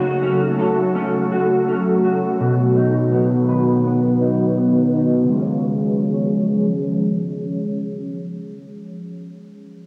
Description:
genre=dream pop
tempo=83 BPM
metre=4/4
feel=straight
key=Db mixolydian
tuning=A4 = 440 Hz
part: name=ethereal airy pad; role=sustained chords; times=0.0-8.6 s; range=Db3 to Db5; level=-22 LUFS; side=equal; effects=ensemble chorus, built-in reverb, low-pass filter
part: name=electric guitar at the edge of break-up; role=arpeggios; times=0.0-8.9 s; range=Cb3 to Db5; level=-22 LUFS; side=equal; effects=ensemble chorus, low-pass filter, tape echo
room=wet studio reverb, RT60 0.6 s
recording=home recording on cassette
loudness=-18 LUFS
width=mono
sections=0.0-5.3 A section; 5.3-8.2 B section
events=filter sweep 0.0-5.3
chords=0.0 Gbm/Db; 2.4 Cb; 5.3 Db

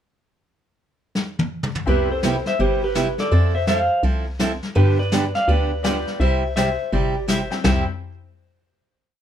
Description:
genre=country, western swing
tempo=166 BPM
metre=4/4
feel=swing 64% on 8ths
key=C major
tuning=A4 = 440 Hz
part: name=vintage brush drum kit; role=drums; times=1.2-7.9 s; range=brushed snare drum, hi-hat, snare drum, toms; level=-24 LUFS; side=left 2 dB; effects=none
part: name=clean lap steel guitar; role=melody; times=1.9-7.9 s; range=G4 to F5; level=-22 LUFS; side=equal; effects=none
part: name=picked steel-string acoustic guitar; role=accompaniment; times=1.9-7.8 s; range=C3 to A4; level=-25 LUFS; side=right 4 dB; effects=none
part: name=tack piano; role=accompaniment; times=1.9-2.9, 5.8-7.9 s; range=G3 to C5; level=-30 LUFS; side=left 6 dB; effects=none
part: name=hollow knocking FM bass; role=bass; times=1.9-7.9 s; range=G1 to G2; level=-21 LUFS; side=equal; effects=none
room=light reverb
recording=none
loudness=-18 LUFS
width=side -10 dB against mid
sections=0.4-1.9 pickup bar; 1.9-7.6 A section; 7.6-9.1 final chord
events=drum fill 1.2-1.9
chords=0.4 N.C.; 1.9 Cmaj7; 3.3 Fmaj7; 4.8 G7; 6.2 C

